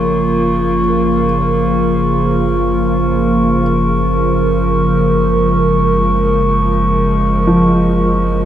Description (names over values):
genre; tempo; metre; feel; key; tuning
ambient; free time; none; none; F# major; A4 = 440 Hz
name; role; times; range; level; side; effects
warbly tape-like pad; sustained chords; 0.0-8.4 s; C#3 to A#4; -14 LUFS; equal; chorus, built-in reverb
felt-muted upright piano; arpeggios; 0.0-8.4 s; E#3 to C#5; -19 LUFS; right 1 dB; diffuse ambient delay
warm sub bass; bass; 0.0-8.4 s; F#1; -20 LUFS; equal; none
glass harmonica; texture; 0.0-8.4 s; C#6; -19 LUFS; equal; none
room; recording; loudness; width
wet huge ambient reverb, RT60 7.3 s; none; -11 LUFS; side -10 dB against mid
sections
0.0-8.4 A section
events
none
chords
0.0 F#maj9